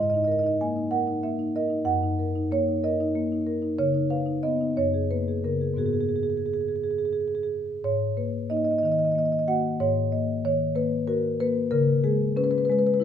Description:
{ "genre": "classical, contemporary piece for solo marimba", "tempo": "62 BPM (dotted quarters)", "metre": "6/8", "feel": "rubato", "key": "G# minor", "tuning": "A4 = 442 Hz", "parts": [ { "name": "marimba with medium mallets", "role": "solo", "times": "0.0-13.0 s", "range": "F#2 to G#5", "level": "-23 LUFS", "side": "equal", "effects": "none" } ], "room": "moderate recital hall reverb, RT60 1.5 s", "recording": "close, detailed microphones", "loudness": "-23 LUFS", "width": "side -8 dB against mid", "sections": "0.0-7.9 A section; 7.9-13.0 B section", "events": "none", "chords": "0.0 G#sus2; 1.9 F#6; 3.8 C#sus2; 4.8 F#add9; 5.8 G#m7; 7.9 G#sus2; 8.8 D#m; 9.8 G#sus2; 11.7 C#7(no3)" }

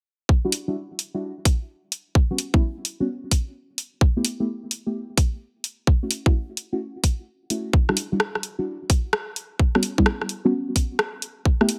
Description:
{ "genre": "UK garage, two-step garage", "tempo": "129 BPM", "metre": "4/4", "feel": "swing 66% on 16ths", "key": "E dorian", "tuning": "A4 = 440 Hz", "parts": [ { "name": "electronic kick drum", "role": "drums", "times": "0.3-11.6 s", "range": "none", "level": "-21 LUFS", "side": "equal", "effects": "none" }, { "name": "deep mellow chord stab", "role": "stabs", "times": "0.4-11.7 s", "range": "G3 to G4", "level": "-28 LUFS", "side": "equal", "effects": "chorus, phaser, digital delay" }, { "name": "garage drum kit", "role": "drums", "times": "0.5-11.8 s", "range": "hi-hat, rim click", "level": "-26 LUFS", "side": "equal", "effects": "none" } ], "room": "digital ambience", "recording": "none", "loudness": "-24 LUFS", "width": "mono", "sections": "0.3-11.8 A section", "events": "none", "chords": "0.3 Em9; 2.2 Gmaj7#11; 3.8 G69; 5.9 F#m7; 7.7 Em9; 9.6 Gmaj7#11; 11.2 G69" }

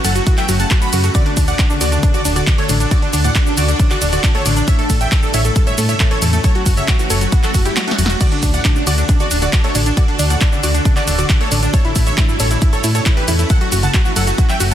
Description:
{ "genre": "uplifting trance", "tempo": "136 BPM", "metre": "4/4", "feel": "straight", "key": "D major", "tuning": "A4 = 440 Hz", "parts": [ { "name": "supersaw stab", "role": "melody", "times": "0.0-14.7 s", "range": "A3 to B5", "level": "-21 LUFS", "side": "right 1 dB", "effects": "sidechain pumping, dub echo" }, { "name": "plucky unison lead", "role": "second line", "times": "0.0-14.7 s", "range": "D4 to B5", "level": "-27 LUFS", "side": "equal", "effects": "ensemble chorus, cassette tape, sidechain pumping, dub echo" }, { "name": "shimmering ambient pad", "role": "sustained chords", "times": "0.0-14.7 s", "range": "D3 to A4", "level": "-25 LUFS", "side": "equal", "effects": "chorus, built-in reverb, phaser, sidechain pumping" }, { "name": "wide unison pluck", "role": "arpeggios", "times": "0.0-14.7 s", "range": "E2 to F#4", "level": "-24 LUFS", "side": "left 2 dB", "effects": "sidechain pumping" }, { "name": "solid FM bass", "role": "bass", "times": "0.0-14.7 s", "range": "D1 to A2", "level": "-17 LUFS", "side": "equal", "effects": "sidechain pumping" }, { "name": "punchy analog drum machine", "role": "drums", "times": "0.0-14.7 s", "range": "crash cymbal, handclaps, hi-hat, ride cymbal, shaker, snare drum", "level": "-21 LUFS", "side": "right 1 dB", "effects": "sidechain pumping on hats, sidechain pumping on cymbals, sidechain pumping on perc" }, { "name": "electronic kick drum", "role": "drums", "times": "0.3-14.5 s", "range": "none", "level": "-14 LUFS", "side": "equal", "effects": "none" } ], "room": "little or no reverb", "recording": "dense, heavily limited modern master", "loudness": "-12 LUFS", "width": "side -11 dB against mid", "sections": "0.0-14.7 A section", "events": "kick drops out 7.8-8.2; drum fill 7.8-8.2", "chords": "0.0 F#m; 1.1 D; 4.7 A; 6.4 F#m; 8.2 D; 11.7 A; 13.5 F#m" }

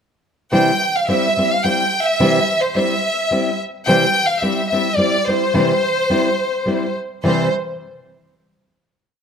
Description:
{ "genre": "mexican folk, mariachi", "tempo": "108 BPM", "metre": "3/4", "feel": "swing 54% on 8ths", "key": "C major", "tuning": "A4 = 438 Hz", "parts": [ { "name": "clear chamber violin section", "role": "melody", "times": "0.5-7.5 s", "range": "C5 to G5", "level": "-18 LUFS", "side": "equal", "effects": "none" }, { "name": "nylon-string guitar", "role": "accompaniment", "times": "0.5-7.5 s", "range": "C3 to C5", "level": "-18 LUFS", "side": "equal", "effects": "none" } ], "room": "moderate recital hall reverb, RT60 1.4 s", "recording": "close, detailed microphones", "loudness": "-15 LUFS", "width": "side -7 dB against mid", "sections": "0.5-7.2 A section; 7.2-8.9 final chord", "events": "none", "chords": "0.5 C" }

